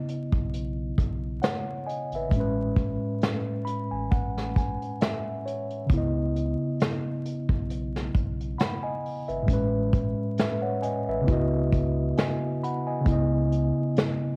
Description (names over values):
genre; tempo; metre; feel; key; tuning
lo-fi hip hop; 67 BPM; 4/4; swing 56% on 16ths; C# minor; A4 = 439 Hz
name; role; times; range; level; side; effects
mellow tine electric piano; accompaniment; 0.0-14.4 s; A2 to B5; -30 LUFS; equal; low-pass filter, cassette tape
vintage brush drum kit; drums; 0.1-14.2 s; hi-hat, kick drum, snare drum; -29 LUFS; equal; cassette tape
warm sub bass; bass; 0.3-13.7 s; G#1 to C#2; -35 LUFS; equal; none
room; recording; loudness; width
light reverb; home recording on cassette, vinyl crackle; -27 LUFS; mono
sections
0.0-13.1 A section; 13.1-14.4 A section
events
tine electric piano fill 3.2-5.9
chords
0.0 C#m9; 2.3 Amaj9; 5.9 C#m9; 9.5 Amaj9; 11.3 C#m11; 13.1 C#m9